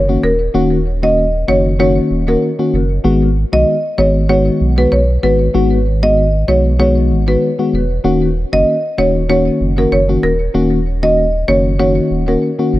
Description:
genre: afrobeats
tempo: 96 BPM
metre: 4/4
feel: swing 55% on 16ths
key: G# minor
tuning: A4 = 439 Hz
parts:
  - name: marimba with medium mallets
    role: melody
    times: 0.0-12.4 s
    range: A#4 to D#5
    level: -16 LUFS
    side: right 1 dB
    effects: tape echo
  - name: warm sub bass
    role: bass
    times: 0.0-12.8 s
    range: D#1 to B1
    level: -16 LUFS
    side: equal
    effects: none
  - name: mellow FM electric piano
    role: accompaniment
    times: 0.1-12.8 s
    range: D#3 to F#4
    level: -15 LUFS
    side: left 2 dB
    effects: chorus
room: small room ambience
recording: none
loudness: -11 LUFS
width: side -16 dB against mid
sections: 0.0-12.8 A section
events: none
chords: 0.0 D#m7; 3.0 G#m7; 8.0 D#m7

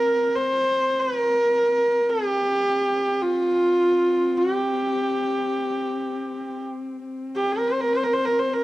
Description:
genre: mongolian traditional, Mongolian folk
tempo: free time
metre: none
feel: none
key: unclear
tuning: A4 = 444 Hz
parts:
  - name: bright horsehead fiddle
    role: melody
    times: 0.0-8.6 s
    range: F4 to C5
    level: -20 LUFS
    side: equal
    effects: cassette tape
  - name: warm horsehead fiddle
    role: drone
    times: 0.0-8.6 s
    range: C4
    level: -30 LUFS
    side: left 2 dB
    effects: stereo widening, cassette tape
room: moderate spring reverb, RT60 2.0 s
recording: home recording on cassette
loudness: -20 LUFS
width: side -17 dB against mid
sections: 0.0-8.6 A section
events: none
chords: none

